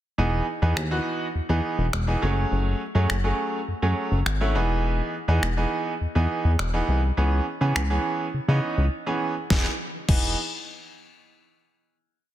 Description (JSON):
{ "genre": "dance-pop", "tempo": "103 BPM", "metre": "4/4", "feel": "straight", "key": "E major", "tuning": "A4 = 438 Hz", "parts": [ { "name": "bright grand piano", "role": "accompaniment", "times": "0.2-10.4 s", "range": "E3 to G#4", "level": "-26 LUFS", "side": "right 2 dB", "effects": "sidechain pumping" }, { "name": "chorused synth bass", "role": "bass", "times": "0.2-10.4 s", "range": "E1 to C#3", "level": "-23 LUFS", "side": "equal", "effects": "sidechain pumping" }, { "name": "pop drum kit", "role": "drums", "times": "0.8-10.2 s", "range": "crash cymbal, finger snaps, kick drum, snare drum", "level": "-27 LUFS", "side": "left 1 dB", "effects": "overdrive, soft clipping on snare" } ], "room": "light reverb, digital ambience", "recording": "dense, heavily limited modern master", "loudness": "-22 LUFS", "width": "side -13 dB against mid", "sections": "0.2-9.5 verse; 9.5-11.8 final chord", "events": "break 8.9-9.5", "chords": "0.2 Emaj7; 2.2 F#madd9; 4.6 Emaj7; 7.2 C#m7; 9.5 Emaj7", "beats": "| 0.18 0.77 1.35 1.93 | 2.51 3.10 3.68 4.26 | 4.84 5.43 6.01 6.59 | 7.17 7.76 8.34 8.92 | 9.50 10.09" }